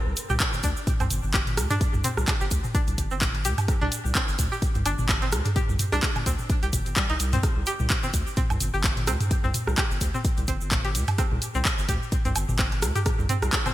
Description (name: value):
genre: minimal techno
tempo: 128 BPM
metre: 4/4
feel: swing 56% on 16ths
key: unclear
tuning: A4 = 439 Hz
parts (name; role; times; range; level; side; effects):
- saturated sub bass; bass; 0.1-13.7 s; G1 to D2; -28 LUFS; equal; sidechain pumping
- house drum kit; drums; 0.2-13.7 s; handclaps, hi-hat; -29 LUFS; equal; small room ambience, gated reverb
- tube shaker; percussion; 0.2-13.7 s; none; -37 LUFS; right 3 dB; none
- string-like resonator pluck; riff; 0.3-13.7 s; G3 to G4; -32 LUFS; equal; chorus, sidechain pumping, digital delay
- techno drum kit; percussion; 0.3-13.7 s; rim click, toms, woodblock; -29 LUFS; right 1 dB; overdrive, small room ambience, gated reverb
- electronic kick drum; drums; 0.4-13.6 s; none; -26 LUFS; equal; small room ambience
room: light reverb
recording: bright 1980s-style digital production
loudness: -22 LUFS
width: side -14 dB against mid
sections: 0.0-13.7 A section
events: none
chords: 0.0 C5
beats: 0.40 0.87 1.34 | 1.81 2.28 2.75 3.21 | 3.68 4.15 4.62 5.09 | 5.56 6.03 6.50 6.96 | 7.43 7.90 8.37 8.84 | 9.31 9.78 10.25 10.71 | 11.18 11.65 12.12 12.59 | 13.06 13.53